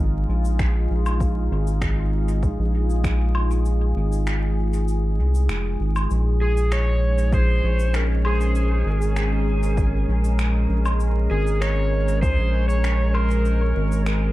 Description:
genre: ambient dub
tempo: 98 BPM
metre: 4/4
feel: straight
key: Bb minor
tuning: A4 = 439 Hz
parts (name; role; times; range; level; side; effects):
- deep dark ambient pad; sustained chords; 0.0-14.3 s; Ab3 to Bb4; -28 LUFS; equal; chorus, built-in reverb
- round analog bass; bass; 0.0-14.3 s; F1 to Db2; -20 LUFS; equal; none
- electronic shaker, finger snaps and woodblock; drums; 0.4-14.2 s; none; -32 LUFS; equal; overdrive, dub echo
- electronic kick drum; drums; 0.6-3.2, 7.3-12.4 s; none; -24 LUFS; equal; none
- overdriven slide guitar; melody; 6.4-14.3 s; Ab4 to Db5; -27 LUFS; equal; dub echo
room: light reverb, digital ambience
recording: vinyl crackle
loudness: -19 LUFS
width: side -16 dB against mid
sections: 0.0-6.1 A section; 6.1-14.3 B section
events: kick drops out 3.7-6.1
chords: 0.0 Ab5; 6.1 Bbm7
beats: 0.59 | 1.21 1.82 2.43 3.04 | 3.66 4.27 4.88 5.49 | 6.11 6.72 7.33 7.94 | 8.55 9.17 9.78 10.39 | 11.00 11.62 12.23 12.84 | 13.45 14.06

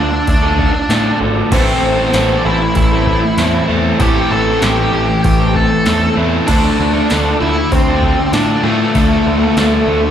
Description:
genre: quiet-loud alternative rock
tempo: 97 BPM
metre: 4/4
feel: straight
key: A minor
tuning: A4 = 440 Hz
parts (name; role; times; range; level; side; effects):
- octave-fuzz lead guitar; melody; 0.0-10.1 s; A3 to A5; -17 LUFS; left 1 dB; distortion, slapback echo
- tonewheel organ; sustained chords; 0.0-10.1 s; F3 to E6; -29 LUFS; equal; none
- crunchy overdriven guitar; riff; 0.0-10.1 s; A2 to A4; -17 LUFS; equal; spring reverb
- growling picked electric bass; bass; 0.0-10.1 s; G#1 to A2; -18 LUFS; equal; overdrive
- electro analog drum machine; drums; 0.3-9.7 s; crash cymbal, hi-hat, kick drum, snare drum; -18 LUFS; equal; none
- overdriven electric guitar; riff; 1.5-10.1 s; A2 to D4; -19 LUFS; equal; none
room: little or no reverb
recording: live gig heard through the venue's PA, club reverb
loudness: -11 LUFS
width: side -9 dB against mid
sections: 0.0-10.1 A section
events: none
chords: 0.0 Dmadd9; 1.5 Am7; 6.5 Dmadd9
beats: 0.28 0.90 | 1.53 2.15 2.77 3.39 | 4.01 4.63 5.24 5.86 | 6.48 7.10 7.72 8.33 | 8.95 9.57

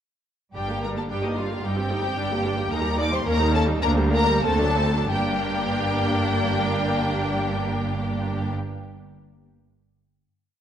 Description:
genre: quick classical-period movement for string orchestra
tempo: 88-112 BPM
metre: 2/4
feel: rubato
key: G minor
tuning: A4 = 440 Hz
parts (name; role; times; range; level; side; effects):
- clear studio violin section; second line; 0.5-8.5 s; Eb4 to D5; -29 LUFS; left 1 dB; none
- rich symphonic cello section; bass; 0.5-8.5 s; D2 to G2; -28 LUFS; right 2 dB; none
- clear symphonic violin section; melody; 0.6-8.5 s; Eb5 to D6; -29 LUFS; left 4 dB; none
- clear symphonic viola section; accompaniment; 0.6-8.5 s; F#3 to G4; -26 LUFS; equal; none
- warm studio double bass section; bass; 0.6-8.5 s; G1 to Eb2; -29 LUFS; right 2 dB; none
room: wet scoring stage reverb, RT60 1.6 s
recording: worn, warbling old tape, cassette tape, warbly pitch drift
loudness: -21 LUFS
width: side -9 dB against mid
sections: 0.6-5.1 A section; 5.1-7.7 final chord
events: slowing down 2.2-5.1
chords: 0.6 Gm; 1.6 Cm/G; 2.2 Gm; 2.7 Eb; 3.3 Eb7; 3.8 Gm/D; 4.4 D7; 5.1 Gm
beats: | 0.56 1.11 | 1.65 2.18 | 2.72 3.27 | 3.83 4.44 | 5.11 5.78 | 6.43 7.09

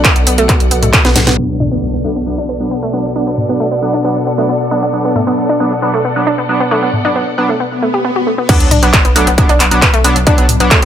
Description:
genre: driving peak-time techno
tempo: 135 BPM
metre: 4/4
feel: straight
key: B minor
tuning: A4 = 444 Hz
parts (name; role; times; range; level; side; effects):
- analog pluck; riff; 0.0-10.8 s; A3 to G4; -17 LUFS; equal; chorus, sidechain pumping, tape echo
- saturated sub bass; bass; 0.0-1.4, 8.6-10.8 s; B1; -16 LUFS; equal; overdrive, sidechain pumping, low-pass filter
- analog drone; drone; 0.0-10.8 s; B2; -22 LUFS; left 1 dB; chorus, sidechain pumping
- electronic kick drum; drums; 0.0-1.0, 8.5-10.8 s; none; -11 LUFS; equal; distortion, overdrive
- techno drum kit; drums; 0.0-10.8 s; crash cymbal, handclaps, hi-hat, snare drum, toms; -14 LUFS; equal; overdrive, sidechain pumping on hats, low-pass filter on hats, low-pass filter on snare, sidechain pumping on toms, low-pass filter on toms, sidechain pumping on cymbals, low-pass filter on cymbals
- dark studio string section; texture; 0.0-7.6 s; B3 to F#5; -20 LUFS; left 1 dB; sidechain pumping
- sync-sweep polysynth; stabs; 1.4-10.8 s; F#3 to D4; -17 LUFS; right 1 dB; chorus, sidechain pumping, digital delay
- impact, swell and sub drop; sound effects; 1.4-3.2, 7.7-10.3 s; none; -20 LUFS; left 1 dB; none
room: moderate lush hall reverb, RT60 1.8 s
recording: low-pass filter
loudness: -10 LUFS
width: side -10 dB against mid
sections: 0.0-1.4 A section; 1.4-8.5 B section; 8.5-10.8 C section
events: drum fill 1.0-1.4; band accent 1.3; impact 1.4-3.2, 8.5-10.3; filter sweep on analog polysynth 1.4-8.5; filter sweep 1.4-8.5; swell 7.7-8.5; drop 8.5-10.8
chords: 0.0 Bm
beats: 0.04 0.49 0.93 | 1.38 1.82 2.27 2.71 | 3.16 3.60 4.04 4.49 | 4.93 5.38 5.82 6.27 | 6.71 7.16 7.60 8.04 | 8.49 8.93 9.38 9.82 | 10.27 10.71

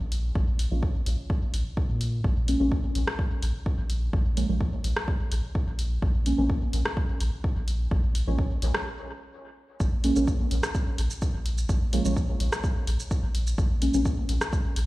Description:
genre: dub techno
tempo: 127 BPM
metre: 4/4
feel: straight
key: Bb minor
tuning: A4 = 439 Hz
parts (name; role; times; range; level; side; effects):
- soft dub sub bass; bass; 0.0-14.9 s; Bb1 to Bb2; -27 LUFS; equal; tube saturation, sidechain pumping
- deep house drum kit; drums; 0.1-14.9 s; hi-hat, rim click, shaker; -34 LUFS; equal; dub echo
- electronic kick drum; drums; 0.4-14.6 s; none; -27 LUFS; equal; none
- deep mellow chord stab; stabs; 0.7-14.0 s; F3 to Db4; -29 LUFS; right 1 dB; chorus, phaser, sidechain pumping, dub echo
room: light reverb, digital ambience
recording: played on a big sound system in a bare room, stone room reverb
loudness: -24 LUFS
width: side -19 dB against mid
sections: 0.0-9.8 A section; 9.8-14.9 A section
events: break 8.9-9.8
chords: 0.0 Bbm7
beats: | 0.35 0.83 1.30 1.77 | 2.25 2.72 3.19 3.66 | 4.13 4.61 5.08 5.55 | 6.02 6.50 6.97 7.44 | 7.91 8.39 8.86 9.33 | 9.80 10.28 10.75 11.22 | 11.69 12.17 12.64 13.11 | 13.58 14.06 14.53

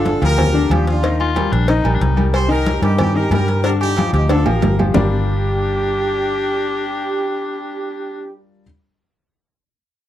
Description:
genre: latin, salsa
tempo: 184 BPM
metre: 4/4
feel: straight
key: G minor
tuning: A4 = 440 Hz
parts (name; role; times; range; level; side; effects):
- brilliant horn section; melody; 0.0-8.3 s; D4 to C5; -21 LUFS; right 2 dB; slapback echo
- bright grand piano; accompaniment; 0.0-8.6 s; D3 to Eb5; -22 LUFS; left 4 dB; none
- vintage muted fingered electric bass; bass; 0.0-8.6 s; G1 to G2; -18 LUFS; equal; none
- congas; percussion; 0.1-5.0 s; none; -24 LUFS; left 1 dB; none
- cowbell and bongos; percussion; 0.1-5.0 s; none; -25 LUFS; left 4 dB; none
- agogo bells and timbales; percussion; 0.2-5.0 s; none; -25 LUFS; right 8 dB; none
- raspy baritone saxophone; second line; 1.2-2.3, 4.9-8.3 s; D4 to F4; -25 LUFS; left 6 dB; none
room: little or no reverb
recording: dry, close 1970s-style studio recording, lossy compression artefacts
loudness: -15 LUFS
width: side -12 dB against mid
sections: 0.0-4.9 A section; 4.9-7.5 B section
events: drum fill 4.3-4.9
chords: 0.0 Gm7; 1.0 Ebmaj9; 2.3 Cm7; 3.6 Gm7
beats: 0.06 0.39 0.71 | 1.04 1.36 1.69 2.01 | 2.34 2.67 2.99 3.31 | 3.64 3.97 4.29 4.62 | 4.94 5.27 5.59 5.92 | 6.24 6.57 6.89 7.22

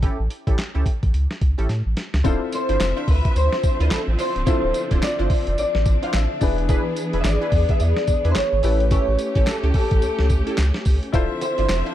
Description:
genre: R&B, new jack swing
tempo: 108 BPM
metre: 4/4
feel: swing 60% on 16ths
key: D dorian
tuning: A4 = 441 Hz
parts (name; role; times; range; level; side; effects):
- funky polysynth comp; stabs; 0.0-11.9 s; C#4 to C5; -30 LUFS; right 3 dB; chorus
- warm sub bass; bass; 0.0-11.8 s; C#1 to A2; -21 LUFS; equal; none
- boom bap sampler-style drum kit; drums; 0.0-11.8 s; handclaps, hi-hat, kick drum, snare drum, tambourine; -22 LUFS; equal; none
- warm grand piano; accompaniment; 2.2-11.9 s; C4 to C5; -30 LUFS; left 8 dB; none
- rich studio string section; sustained chords; 2.3-11.9 s; D3 to E5; -29 LUFS; right 1 dB; none
- electric guitar at the edge of break-up; melody; 2.5-11.9 s; A4 to F5; -24 LUFS; left 1 dB; ensemble chorus
room: digital ambience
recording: dark, warm production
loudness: -18 LUFS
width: side -12 dB against mid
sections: 0.0-2.2 A section; 2.2-11.9 B section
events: drum fill 1.7-2.2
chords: 0.0 A7; 2.2 Dm9; 6.4 E7; 8.6 A7; 11.1 Dm9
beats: | 0.02 0.58 1.14 1.69 | 2.25 2.80 3.36 3.91 | 4.47 5.02 5.58 6.13 | 6.69 7.25 7.80 8.36 | 8.91 9.47 10.02 10.58 | 11.13 11.69

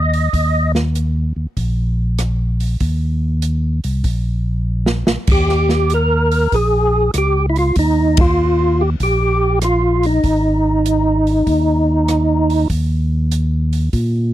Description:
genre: soul jazz organ trio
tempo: 97 BPM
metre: 4/4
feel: swing 67% on 8ths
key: Eb mixolydian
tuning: A4 = 440 Hz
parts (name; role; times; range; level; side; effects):
- percussive tonewheel organ; melody; 0.0-0.7, 5.3-12.7 s; Eb4 to Eb5; -16 LUFS; right 1 dB; slow rotary speaker, overdrive, chorus vibrato
- tonewheel organ; bass; 0.0-14.3 s; Ab1 to Bb2; -17 LUFS; equal; overdrive, slow rotary speaker
- swinging big-band drum kit; drums; 0.1-14.1 s; crash cymbal, hi-hat, kick drum, ride cymbal, rim click, snare drum; -19 LUFS; equal; none
room: little or no reverb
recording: dry, close 1970s-style studio recording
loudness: -14 LUFS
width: side -13 dB against mid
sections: 0.0-5.3 A section; 5.3-14.3 A section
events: drum fill 4.7-5.3; band accent 8.1-8.4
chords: 0.3 Eb5; 4.0 N.C.; 5.3 Eb9; 10.2 Ab5; 12.7 Eb5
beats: | 0.33 0.95 1.57 2.19 | 2.81 3.43 4.05 4.67 | 5.28 5.90 6.52 7.14 | 7.76 8.38 9.00 9.62 | 10.23 10.85 11.47 12.09 | 12.70 13.32 13.94

